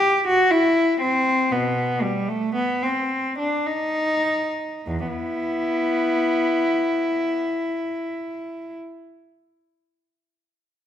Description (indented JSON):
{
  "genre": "classical, baroque-style suite movement for unaccompanied cello",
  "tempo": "49-63 BPM",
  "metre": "3/4",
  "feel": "rubato",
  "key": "E minor",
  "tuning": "A4 = 442 Hz",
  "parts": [
    { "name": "rich cello", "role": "solo", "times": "0.0-8.7 s", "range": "E2 to G4", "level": "-20 LUFS", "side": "left 1 dB", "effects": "none" }
  ],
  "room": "moderate recital hall reverb, RT60 1.4 s",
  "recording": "minimal, uncompressed stereo recording",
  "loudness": "-20 LUFS",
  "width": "side -10 dB against mid",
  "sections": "0.0-4.9 A section; 4.9-8.4 B section",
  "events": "slowing down 0.0-4.9",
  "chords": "none"
}